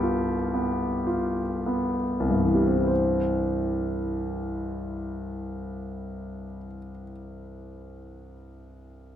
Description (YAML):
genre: classical, romantic nocturne for solo piano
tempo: 31-41 BPM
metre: 3/4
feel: rubato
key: C major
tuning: A4 = 440 Hz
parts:
  - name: warm concert grand piano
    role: solo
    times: 0.0-9.2 s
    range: C2 to C5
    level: -26 LUFS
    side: equal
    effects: none
room: moderate recital hall reverb, RT60 1.3 s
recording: none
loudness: -24 LUFS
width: side -10 dB against mid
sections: 0.0-2.9 A section; 2.9-8.1 B section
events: slowing down 0.0-2.9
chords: 0.0 G7/C; 2.9 C